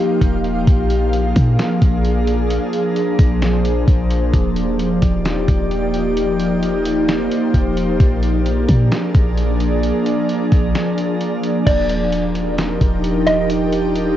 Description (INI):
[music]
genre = hip hop, atmospheric cloud-rap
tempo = 131 BPM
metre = 4/4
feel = half-time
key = Eb major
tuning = A4 = 444 Hz
[part]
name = ethereal airy pad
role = sustained chords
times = 0.0-14.2 s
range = F3 to F5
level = -18 LUFS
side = equal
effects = ensemble chorus, built-in reverb, sidechain pumping, cassette tape
[part]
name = drifting glass-harmonics texture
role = texture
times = 0.0-14.2 s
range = F4 to Bb5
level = -33 LUFS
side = equal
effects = chorus, built-in reverb, cassette tape
[part]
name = clean 808-style bass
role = bass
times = 0.2-14.2 s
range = Eb1 to Bb2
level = -19 LUFS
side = equal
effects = none
[part]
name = lo-fi sampler-style drum kit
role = drums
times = 0.2-14.1 s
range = crash cymbal, hi-hat, kick drum, rim click, snare drum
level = -20 LUFS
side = equal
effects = cassette tape
[part]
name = mellow electric guitar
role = melody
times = 11.7-13.5 s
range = D5 to Eb5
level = -20 LUFS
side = right 1 dB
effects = phaser, cassette tape, analog delay
[sound]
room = light reverb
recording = home recording on cassette, nothing above 7.8 kHz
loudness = -14 LUFS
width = side -12 dB against mid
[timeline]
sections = 0.0-11.7 A section; 11.7-14.2 B section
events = break 10.7-11.7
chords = 0.0 Ebadd9; 0.7 Bb7; 4.3 Ebmaj9; 8.0 Bb7; 11.7 Ebmaj9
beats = 0.21 | 0.67 1.13 1.59 2.05 | 2.50 2.96 3.42 3.88 | 4.34 4.79 5.25 5.71 | 6.17 6.63 7.08 7.54 | 8.00 8.46 8.92 9.38 | 9.83 10.29 10.75 11.21 | 11.66 12.12 12.58 13.04 | 13.50 13.96